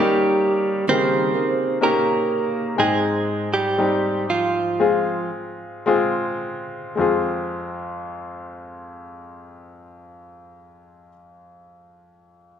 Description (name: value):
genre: pop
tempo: 53-66 BPM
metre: 4/4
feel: straight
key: F minor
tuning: A4 = 440 Hz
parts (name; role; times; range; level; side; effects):
- direct-recorded clean electric guitar; melody; 0.0-5.3 s; F3 to C5; -21 LUFS; right 3 dB; spring reverb
- warm grand piano; accompaniment; 0.0-12.6 s; F2 to G5; -22 LUFS; left 3 dB; none
- nylon-string guitar; arpeggios; 0.0-2.8 s; Eb3 to Bb4; -28 LUFS; right 7 dB; none
room: moderate recital hall reverb, RT60 1.6 s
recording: recorded in a church or concert hall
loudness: -19 LUFS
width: side -8 dB against mid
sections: 0.0-7.0 A section; 7.0-11.4 B section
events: slowing down 0.0-7.0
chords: 0.0 Eb7; 2.8 Abmaj7; 4.8 Fm